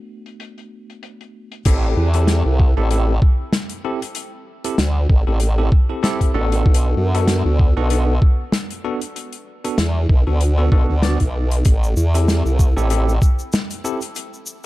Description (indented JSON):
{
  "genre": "glitch hop",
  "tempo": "96 BPM",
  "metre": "4/4",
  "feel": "swing 56% on 16ths",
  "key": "A dorian",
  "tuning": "A4 = 440 Hz",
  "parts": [
    { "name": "barky tine electric piano", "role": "stabs", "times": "0.0-14.0 s", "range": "A3 to D5", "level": "-25 LUFS", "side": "equal", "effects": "medium stereo tremolo, sidechain pumping, digital delay" },
    { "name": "natural country drum kit", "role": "drums", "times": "0.3-14.6 s", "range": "crash cymbal, hi-hat, shaker, snare drum", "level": "-24 LUFS", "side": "left 2 dB", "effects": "low-pass filter on hats, low-pass filter on cymbals, low-pass filter on snare, low-pass filter on perc, low-pass filter on room" },
    { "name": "formant-sweep wobble bass", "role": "bass", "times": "1.7-13.2 s", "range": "A1 to F#2", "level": "-17 LUFS", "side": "equal", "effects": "chorus" },
    { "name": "electronic kick drum", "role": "drums", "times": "1.7-13.4 s", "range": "none", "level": "-14 LUFS", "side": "equal", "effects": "none" }
  ],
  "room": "small room ambience",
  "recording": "dark, warm production",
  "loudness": "-15 LUFS",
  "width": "side -17 dB against mid",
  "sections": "0.0-1.7 A section; 1.7-14.7 B section",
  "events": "drop 1.7-14.7",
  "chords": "0.0 Bm7; 1.7 Am7; 6.7 Bm7; 11.7 Am7",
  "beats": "0.41 1.03 | 1.66 2.28 2.91 3.53 | 4.16 4.78 5.41 6.03 | 6.66 7.28 7.91 8.53 | 9.16 9.78 10.41 11.03 | 11.66 12.28 12.91 13.53 | 14.16"
}